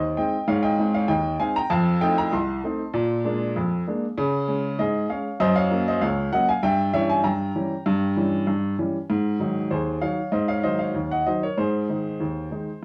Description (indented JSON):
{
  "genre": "ragtime piano",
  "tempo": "97 BPM",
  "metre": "2/4",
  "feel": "straight",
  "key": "unclear",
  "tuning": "A4 = 443 Hz",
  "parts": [
    { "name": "warm upright piano", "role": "solo", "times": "0.0-12.8 s", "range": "C2 to C6", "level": "-24 LUFS", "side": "equal", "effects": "none" }
  ],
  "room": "moderate small room reverb, RT60 0.5 s",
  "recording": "worn, warbling old tape, cassette tape, warbly pitch drift",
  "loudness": "-24 LUFS",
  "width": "mono",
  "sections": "0.0-12.8 A section",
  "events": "none",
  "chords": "0.0 Ab; 1.7 F7; 2.9 Bb7; 4.2 Db5; 5.4 Gb; 6.6 Gdim7; 9.1 Ab7; 11.6 Ab"
}